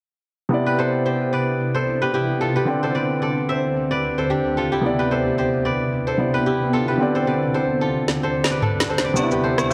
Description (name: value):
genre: afrobeats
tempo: 111 BPM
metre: 4/4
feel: swing 55% on 16ths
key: C major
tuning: A4 = 440 Hz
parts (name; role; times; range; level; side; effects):
- warm baby grand piano; accompaniment; 0.5-9.7 s; C3 to D5; -25 LUFS; equal; none
- granular cloud pad; sustained chords; 1.4-9.7 s; D2 to G4; -30 LUFS; equal; built-in reverb
- kora; riff; 0.7-9.7 s; D4 to E5; -25 LUFS; equal; tape echo
- afro-pop drum kit; drums; 8.1-9.7 s; rim click, shaker, snare drum, toms; -25 LUFS; equal; none
- agogo bells and woodblock; percussion; 9.2-9.7 s; none; -29 LUFS; equal; none
room: light reverb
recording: none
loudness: -21 LUFS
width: mono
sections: 0.5-9.7 A section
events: drum fill 8.1-9.2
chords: 0.5 Cmaj9; 2.7 D7sus4; 4.8 Cmaj9; 7.0 D7sus4; 9.2 Cmaj9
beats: | 0.51 1.05 1.59 2.14 | 2.68 3.22 3.76 4.30 | 4.84 5.38 5.92 6.46 | 7.00 7.54 8.08 8.62 | 9.16 9.70